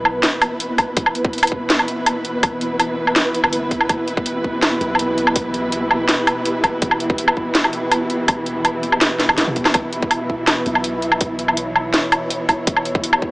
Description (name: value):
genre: half-time drum and bass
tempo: 164 BPM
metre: 4/4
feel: half-time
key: E dorian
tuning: A4 = 440 Hz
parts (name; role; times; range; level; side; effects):
- dark studio string section; sustained chords; 0.0-13.3 s; B2 to C#5; -22 LUFS; equal; sidechain pumping
- long sustained 808-style bass; bass; 0.0-13.3 s; D1 to C#2; -36 LUFS; equal; none
- flickering grainy texture; texture; 0.0-13.3 s; B3 to E5; -27 LUFS; equal; built-in reverb
- drum and bass drum kit; drums; 0.1-13.2 s; hi-hat, snare drum, toms, woodblock; -16 LUFS; equal; none
- electronic kick drum; drums; 0.8-13.3 s; none; -22 LUFS; equal; none
room: light reverb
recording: small speaker sound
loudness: -16 LUFS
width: side -23 dB against mid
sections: 0.0-13.3 A section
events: drum fill 9.2-9.7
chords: 0.0 E5